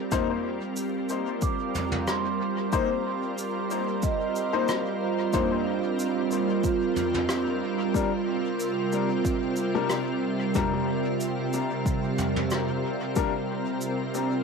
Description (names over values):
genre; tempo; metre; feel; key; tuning
ambient dub; 92 BPM; 4/4; swing 53% on 16ths; unclear; A4 = 440 Hz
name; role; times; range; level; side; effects
soft additive organ-like pad; sustained chords; 0.0-14.4 s; C3 to Bb4; -28 LUFS; right 1 dB; ensemble chorus, built-in reverb, cassette tape, plate reverb
vibraphone with soft mallets; arpeggios; 0.0-14.4 s; C4 to D6; -32 LUFS; right 7 dB; cassette tape, dub echo, plate reverb
bright upright piano; stabs; 0.1-13.3 s; G3 to C5; -31 LUFS; left 8 dB; cassette tape, dub echo, plate reverb
electronic kick drum; drums; 0.1-13.3 s; none; -29 LUFS; left 1 dB; overdrive, cassette tape
soft brush drum kit; drums; 0.1-14.3 s; cabasa, rim click, toms; -34 LUFS; equal; cassette tape, dub echo
room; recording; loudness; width
wet booth ambience, RT60 0.2 s; home recording on cassette; -24 LUFS; side -5 dB against mid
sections
0.0-14.4 A section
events
none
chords
0.0 Cm7; 7.9 Gm/C